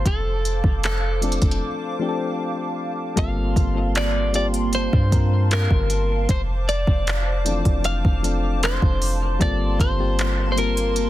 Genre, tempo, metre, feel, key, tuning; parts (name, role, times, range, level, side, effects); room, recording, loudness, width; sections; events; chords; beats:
contemporary R&B; 77 BPM; 4/4; straight; G minor; A4 = 440 Hz
clean electric guitar; melody; 0.0-11.1 s; A4 to F5; -27 LUFS; equal; wide subtle chorus, tape echo
soft electric-piano-like synth keys; accompaniment; 0.0-11.1 s; E3 to Bb4; -27 LUFS; left 4 dB; chorus
hollow soft pad; sustained chords; 0.0-11.1 s; Bb3 to D6; -30 LUFS; right 1 dB; ensemble chorus
warm 808-style bass; bass; 0.0-11.1 s; F1 to G2; -22 LUFS; equal
smooth R&B drum kit; drums; 0.1-11.1 s; handclaps, hi-hat, kick drum; -22 LUFS; equal
digital ambience; dense, heavily limited modern master; -19 LUFS; side -14 dB against mid
0.0-11.1 A section
break 1.6-3.2
0.1 Dm7/F; 3.2 Gm11; 6.3 Dm7/F; 9.4 Gm11
| 0.06 0.83 1.61 2.39 | 3.17 3.95 4.73 5.51 | 6.29 7.07 7.85 8.63 | 9.41 10.19 10.96